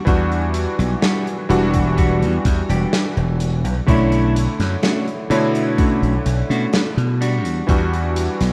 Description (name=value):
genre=vaporwave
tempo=63 BPM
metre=4/4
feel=straight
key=unclear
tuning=A4 = 440 Hz
part: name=clear electric grand piano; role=accompaniment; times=0.0-8.5 s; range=D3 to C#5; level=-24 LUFS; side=equal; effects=analog chorus, tape echo
part: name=clean electric guitar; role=riff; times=0.0-8.4 s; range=G3 to G4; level=-26 LUFS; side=equal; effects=subtle chorus, tape echo
part: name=slap bass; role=bass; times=0.1-8.5 s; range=E1 to B2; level=-22 LUFS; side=equal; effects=none
part: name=big rock drum kit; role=drums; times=0.1-8.5 s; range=hi-hat, snare drum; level=-27 LUFS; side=equal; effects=none
part: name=electronic kick drum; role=drums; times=0.1-7.9 s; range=none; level=-20 LUFS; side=equal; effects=none
room=light reverb, small room ambience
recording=rough home demo mix, cassette tape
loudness=-18 LUFS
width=mono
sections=0.0-8.5 A section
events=none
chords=0.0 Em9; 3.9 Bm11; 7.2 Em9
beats=| 0.07 1.02 1.97 2.92 | 3.88 4.83 5.78 6.74 | 7.69